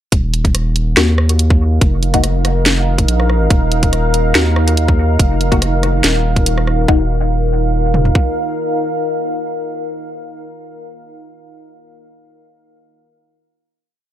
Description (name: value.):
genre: deep dubstep.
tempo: 142 BPM.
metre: 4/4.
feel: swing 53% on 16ths, half-time.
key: Eb minor.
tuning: A4 = 444 Hz.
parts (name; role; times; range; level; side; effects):
deep dark ambient pad; sustained chords; 1.1-10.9 s; Eb4 to F5; -20 LUFS; equal; chorus, built-in reverb.
saturated sub bass; bass; 0.1-8.1 s; Eb1 to Eb2; -15 LUFS; equal; none.
garage drum kit; drums; 0.1-8.3 s; kick drum, toms; -14 LUFS; equal; overdrive.
garage drum kit; drums; 0.1-6.8 s; hi-hat, rim click, snare drum; -17 LUFS; right 1 dB; overdrive.
filtered dub chord stab; stabs; 1.0-10.9 s; Bb3 to Gb4; -21 LUFS; left 4 dB; phaser, wide subtle chorus, dub echo.
room: digital ambience.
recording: none.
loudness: -12 LUFS.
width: side -12 dB against mid.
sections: 0.1-6.9 drop; 6.9-10.3 final chord.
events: drop 0.1-6.9.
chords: 0.1 Eb5; 6.9 Ebm.